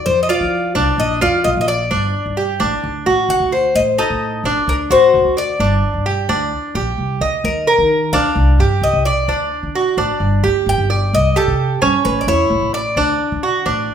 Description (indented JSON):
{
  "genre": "latin, Cuban son and guajira",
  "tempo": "130 BPM",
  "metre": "4/4",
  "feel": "straight",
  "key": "G minor",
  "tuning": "A4 = 440 Hz",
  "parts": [
    { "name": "Cuban tres", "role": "melody", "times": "0.0-13.6 s", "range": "A4 to G5", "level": "-18 LUFS", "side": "left 3 dB", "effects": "none" },
    { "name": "Cuban tres", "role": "arpeggios", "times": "0.0-13.9 s", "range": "C#4 to Eb5", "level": "-17 LUFS", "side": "right 2 dB", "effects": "none" },
    { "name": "upright bass", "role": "bass", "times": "0.0-13.9 s", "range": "G1 to F3", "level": "-19 LUFS", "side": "equal", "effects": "none" }
  ],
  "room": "wet large studio reverb, RT60 0.9 s",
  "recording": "band playing live in one room",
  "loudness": "-14 LUFS",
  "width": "side -8 dB against mid",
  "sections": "0.0-13.9 A section",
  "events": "none",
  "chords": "0.1 F5; 1.0 Bb; 1.9 G5; 2.8 D; 3.8 Adim; 4.7 D; 5.6 G5; 7.4 Eb5; 8.4 Csus2; 9.3 D; 10.2 G5; 11.1 Csus2; 12.0 A; 13.0 D",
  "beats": "| 0.06 0.53 0.99 1.45 | 1.91 2.37 2.83 3.29 | 3.76 4.22 4.68 5.14 | 5.60 6.06 6.52 6.98 | 7.44 7.91 8.37 8.82 | 9.29 9.74 10.21 10.66 | 11.12 11.58 12.04 12.50 | 12.96 13.42 13.88"
}